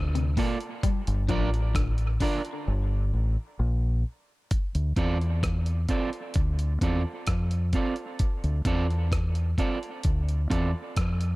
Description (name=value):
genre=dub reggae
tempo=65 BPM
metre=4/4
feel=straight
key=D minor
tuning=A4 = 441 Hz
part: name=electric guitar at the edge of break-up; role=arpeggios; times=0.0-2.4 s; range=Bb2 to G3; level=-36 LUFS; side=left 8 dB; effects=dub echo
part: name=deep dub fingered electric bass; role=bass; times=0.0-11.4 s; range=G1 to F2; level=-25 LUFS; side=equal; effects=none
part: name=dusty soul sampler-style drum kit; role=drums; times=0.2-11.4 s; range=hi-hat, kick drum, rim click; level=-28 LUFS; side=equal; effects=none
part: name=electric guitar at the edge of break-up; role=accompaniment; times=0.4-10.7 s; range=Bb3 to D5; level=-32 LUFS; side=right 4 dB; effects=dub echo
room=little or no reverb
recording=echo-heavy mix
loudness=-24 LUFS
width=side -20 dB against mid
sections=0.0-4.5 A section; 4.5-11.4 B section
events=drums muted 2.7-4.5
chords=0.0 Bbmaj7; 0.8 Gm7; 4.5 Dm7